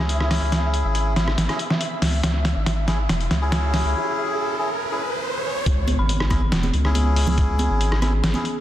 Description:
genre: deep dubstep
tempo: 140 BPM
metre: 4/4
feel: half-time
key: C# minor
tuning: A4 = 444 Hz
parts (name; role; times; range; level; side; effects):
- dark analog pad; sustained chords; 1.6-8.6 s; C#4 to G#4; -37 LUFS; left 1 dB; none
- melodica; stabs; 0.0-8.4 s; C#4 to G#4; -27 LUFS; left 1 dB; low-pass filter, dub echo
- saturated sub bass; bass; 0.0-8.3 s; E1 to C#2; -21 LUFS; equal; none
- riser and impact; sound effects; 0.9-7.4 s; none; -30 LUFS; right 1 dB; none
- flickering grainy texture; texture; 0.0-3.9 s; E5; -33 LUFS; equal; built-in reverb
- trip hop sampler-style drum kit; drums; 0.1-8.5 s; hi-hat, rim click, snare drum; -24 LUFS; equal; studio reverb
- electronic kick drum; drums; 5.7-7.5 s; none; -22 LUFS; equal; studio reverb
- congas; percussion; 5.9-8.4 s; none; -28 LUFS; right 3 dB; dub echo
- dark detuned synth bell; melody; 6.0-6.6 s; B5; -33 LUFS; equal; chorus, dub echo
room: light reverb, digital ambience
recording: dense, heavily limited modern master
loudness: -19 LUFS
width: side -12 dB against mid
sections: 0.0-5.7 A section; 5.7-8.6 B section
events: build-up 0.0-5.7; drum fill 0.0-3.9; riser 0.9-5.7; break 3.9-5.7; drop 5.7-8.6; impact 5.7-7.4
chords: 0.0 C#m

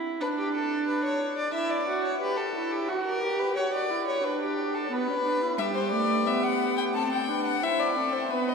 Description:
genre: classical, baroque-style fugue for string quartet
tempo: 89 BPM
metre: 4/4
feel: straight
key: E minor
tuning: A4 = 445 Hz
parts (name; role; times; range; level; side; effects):
- warm viola; accompaniment; 0.0-8.5 s; G3 to G4; -29 LUFS; right 3 dB; none
- warm violin; second line; 0.2-8.5 s; F#4 to E5; -29 LUFS; left 2 dB; none
- warm violin; melody; 5.6-8.5 s; B4 to A5; -27 LUFS; left 6 dB; none
room: wet cathedral reverb, RT60 6.6 s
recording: recorded in a church or concert hall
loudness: -25 LUFS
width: side -5 dB against mid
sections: 0.0-8.5 A section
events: none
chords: 0.2 N.C.; 1.5 Em; 4.2 Bm/D; 5.6 Em/G (rootless); 7.0 Am/C

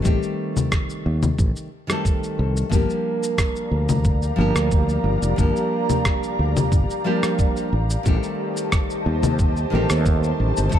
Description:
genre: sunset chillout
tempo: 90 BPM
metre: 4/4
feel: swing 54% on 16ths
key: unclear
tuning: A4 = 442 Hz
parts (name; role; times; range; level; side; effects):
- nylon-string guitar; accompaniment; 0.0-10.8 s; Eb3 to A4; -24 LUFS; moving between left 5 dB and right 3 dB; auto-pan, ping-pong delay
- electronic shaker, congas and rim click; drums; 0.0-10.8 s; none; -25 LUFS; left 3 dB; none
- fretless electric bass; bass; 0.1-10.8 s; F1 to Eb2; -21 LUFS; equal; none
- electronic kick drum; drums; 0.1-10.8 s; none; -20 LUFS; equal; none
- ethereal airy pad; sustained chords; 3.4-10.8 s; G4 to Bb5; -27 LUFS; equal; ensemble chorus, built-in reverb, tremolo
room: light reverb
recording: dark, warm production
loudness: -19 LUFS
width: side -10 dB against mid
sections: 0.0-10.8 A section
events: none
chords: 0.0 Am7b5; 2.7 Gm7; 7.7 Am7b5

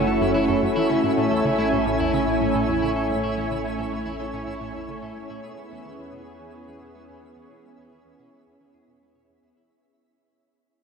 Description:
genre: ambient, sequencer-driven space music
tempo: 109 BPM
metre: 4/4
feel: straight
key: unclear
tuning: A4 = 440 Hz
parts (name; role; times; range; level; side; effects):
- lush unison pad; sustained chords; 0.0-9.8 s; A3 to G#5; -23 LUFS; equal; chorus
- electric guitar at the edge of break-up; arpeggios; 0.0-9.8 s; B3 to C#5; -33 LUFS; left 1 dB; auto-pan, ping-pong delay
- tight sequenced synth; riff; 0.0-9.8 s; E2 to A3; -32 LUFS; equal; chorus, ping-pong delay
- fat analog bass; bass; 0.0-9.8 s; F#1 to E2; -35 LUFS; equal; none
- twinkling granular texture; texture; 0.0-9.9 s; E4 to E5; -31 LUFS; right 1 dB; built-in reverb
room: wet huge ambient reverb, RT60 7.7 s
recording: dark, warm production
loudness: -20 LUFS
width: side -6 dB against mid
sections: 0.0-9.8 A section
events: fade-out on synth arpeggio sound 0.0-9.8; fade-out on clean electric guitar 0.0-9.8; fade-out on analog synth bass 0.0-9.8; fade-out 0.0-9.8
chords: 0.0 F#m7; 1.0 Amaj7; 5.4 E6

